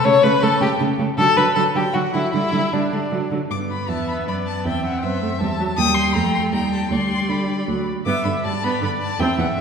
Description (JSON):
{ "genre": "quick classical-period movement for string quartet", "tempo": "158 BPM", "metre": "3/4", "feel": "straight", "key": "G major", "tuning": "A4 = 441 Hz", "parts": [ { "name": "warm violin", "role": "melody", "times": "0.0-9.6 s", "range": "D5 to Eb6", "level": "-26 LUFS", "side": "left 4 dB", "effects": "none" }, { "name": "rich violin", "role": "second line", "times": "0.0-9.6 s", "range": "D4 to A5", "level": "-21 LUFS", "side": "left 3 dB", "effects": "none" }, { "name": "rich viola", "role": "accompaniment", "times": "0.0-9.6 s", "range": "D3 to C4", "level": "-24 LUFS", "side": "right 3 dB", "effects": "none" }, { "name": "rich cello", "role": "bass", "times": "0.0-9.6 s", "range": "D2 to D3", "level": "-24 LUFS", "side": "right 3 dB", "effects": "none" } ], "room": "wet concert hall reverb, RT60 2.1 s", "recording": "heard from further back in the room", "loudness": "-18 LUFS", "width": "side -6 dB against mid", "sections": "0.0-3.5 A section; 3.5-9.6 B section", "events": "none", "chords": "0.1 A/C#; 1.2 D; 2.3 G5/D; 3.1 D; 3.5 G; 4.7 C/E; 5.8 Eb69; 6.9 G/D; 7.7 D; 8.1 G" }